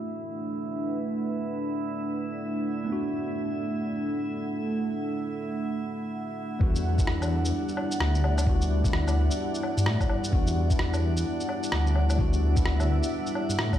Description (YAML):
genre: future garage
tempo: 129 BPM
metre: 4/4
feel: swing 62% on 16ths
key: unclear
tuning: A4 = 440 Hz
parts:
  - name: tine electric piano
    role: accompaniment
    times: 0.0-13.8 s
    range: G3 to F#4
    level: -34 LUFS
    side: left 3 dB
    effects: overdrive, fast stereo tremolo, sidechain pumping, ping-pong delay
  - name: dark analog pad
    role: sustained chords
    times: 0.0-13.8 s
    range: G3 to F#5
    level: -31 LUFS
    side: right 1 dB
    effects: chorus, sidechain pumping
  - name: drifting glass-harmonics texture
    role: texture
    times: 0.0-13.8 s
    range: D4 to E5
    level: -38 LUFS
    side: right 3 dB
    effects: chorus, built-in reverb
  - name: dark detuned saw bass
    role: bass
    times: 6.6-13.8 s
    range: D2 to A2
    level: -25 LUFS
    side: equal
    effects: tube saturation, sidechain pumping
  - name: electronic kick drum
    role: drums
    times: 6.6-13.8 s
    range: none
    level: -25 LUFS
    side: equal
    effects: studio reverb
  - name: electronic shaker, rim click and woodblock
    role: drums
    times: 6.8-13.8 s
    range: none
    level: -33 LUFS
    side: left 1 dB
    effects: studio reverb
room: light reverb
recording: played on a big sound system in a bare room, stone room reverb, low-pass filter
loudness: -25 LUFS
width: side -11 dB against mid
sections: 0.0-6.6 A section; 6.6-13.8 B section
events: filter sweep 0.0-6.6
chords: 0.0 Bm7; 6.6 Em9